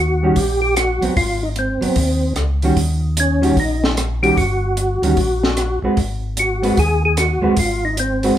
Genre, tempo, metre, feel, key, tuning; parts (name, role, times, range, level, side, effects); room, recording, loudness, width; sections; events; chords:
soul jazz organ trio; 150 BPM; 4/4; swing 65% on 8ths; A4 = 441 Hz
percussive tonewheel organ; melody; 0.0-8.4 s; C4 to Ab4; -19 LUFS; equal; slow rotary speaker, chorus vibrato
mellow tonewheel organ; bass; 0.0-8.3 s; G1 to Eb2; -20 LUFS; equal; slow rotary speaker
hollow-body jazz guitar; accompaniment; 0.2-8.4 s; Eb3 to Cb5; -19 LUFS; right 2 dB
compact cocktail drum kit; drums; 0.4-8.3 s; hi-hat, kick drum, rim click, snare drum; -22 LUFS; equal
moderate large studio reverb, RT60 1.0 s; band playing live in one room; -15 LUFS; side -11 dB against mid
0.0-8.4 A section
0.0 Eb(#9); 1.2 Ab7; 2.8 Eb7#9; 6.0 Ab7#9